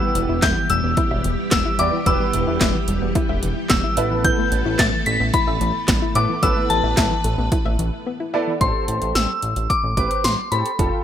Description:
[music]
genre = synth-pop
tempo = 110 BPM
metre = 4/4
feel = straight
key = A minor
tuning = A4 = 442 Hz
[part]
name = soft synth bell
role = melody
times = 0.0-11.0 s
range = A5 to B6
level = -22 LUFS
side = left 2 dB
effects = chorus, ping-pong delay
[part]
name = clear concert grand piano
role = accompaniment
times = 0.0-11.0 s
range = B3 to D5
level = -25 LUFS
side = right 4 dB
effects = ensemble chorus
[part]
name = string machine, full ensemble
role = sustained chords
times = 0.0-8.6 s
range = E3 to B4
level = -28 LUFS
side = equal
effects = ensemble chorus
[part]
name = soft round pluck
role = arpeggios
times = 0.0-8.6 s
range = E3 to E5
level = -28 LUFS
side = left 3 dB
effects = chorus, ping-pong delay
[part]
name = chorused synth bass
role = bass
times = 0.2-10.9 s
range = E1 to A2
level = -24 LUFS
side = equal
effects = none
[part]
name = 80s electronic pad drums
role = drums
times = 0.2-10.9 s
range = handclaps, hi-hat, kick drum, snare drum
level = -21 LUFS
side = equal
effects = overdrive
[sound]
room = light reverb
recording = bright 1980s-style digital production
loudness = -17 LUFS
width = side -10 dB against mid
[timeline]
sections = 0.0-8.6 A section; 8.6-11.0 B section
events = silent gap 8.1-8.6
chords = 0.0 Em; 4.0 Asus2; 8.6 Am7

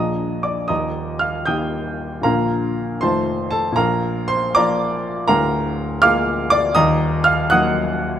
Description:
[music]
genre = classical, romantic character piece for solo piano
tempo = 79 BPM (dotted quarters)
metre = 6/8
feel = uneven beats, rubato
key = unclear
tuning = A4 = 440 Hz
[part]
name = warm baby grand piano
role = solo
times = 0.0-8.2 s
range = D1 to G6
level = -17 LUFS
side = equal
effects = none
[sound]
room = light reverb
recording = close, detailed microphones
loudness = -17 LUFS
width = side -10 dB against mid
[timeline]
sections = 0.0-8.2 A section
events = none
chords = 0.0 Bb7; 0.7 Eb; 2.2 Bb; 3.0 F7; 3.8 Bb; 5.3 Bb7/D; 6.8 Ebm

